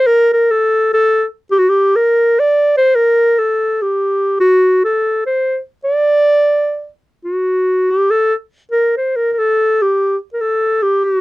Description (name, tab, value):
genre	balkan folk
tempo	free time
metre	none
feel	none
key	unclear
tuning	A4 = 440 Hz
part	dark clarinet	solo	0.0-11.2 s	F#4 to D5	-12 LUFS	equal	none
room	light reverb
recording	dry, close 1970s-style studio recording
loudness	-12 LUFS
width	side -19 dB against mid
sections	0.0-7.3 A section; 7.3-11.2 B section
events	clarinet solo 7.3-11.2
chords	none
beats	free time